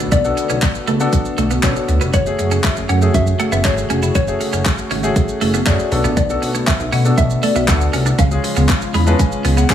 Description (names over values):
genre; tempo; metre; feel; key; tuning
dance-pop; 119 BPM; 4/4; straight; F# minor; A4 = 441 Hz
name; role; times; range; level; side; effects
hollow square pluck; melody; 0.0-9.7 s; C#5 to F#5; -23 LUFS; left 3 dB; chorus, digital delay
warm grand piano; accompaniment; 0.0-9.7 s; G#3 to B5; -22 LUFS; left 3 dB; sidechain pumping
warm analog pad; sustained chords; 0.0-9.7 s; C#3 to G#4; -25 LUFS; left 2 dB; chorus, sidechain pumping
twelve-string electric guitar; riff; 0.0-9.7 s; G#3 to F#4; -23 LUFS; right 6 dB; wide subtle chorus
chorused synth bass; bass; 0.0-9.7 s; E#1 to C#3; -18 LUFS; equal; sidechain pumping
deep house drum kit; drums; 0.1-9.7 s; handclaps, hi-hat, kick drum, shaker; -19 LUFS; equal; none
room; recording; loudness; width
light reverb, digital ambience; small room ambience; -14 LUFS; side -10 dB against mid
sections
0.0-9.7 A section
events
grand piano fill 8.7-9.7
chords
0.0 Bm7; 2.1 F#madd9; 5.9 Bm7; 8.2 C#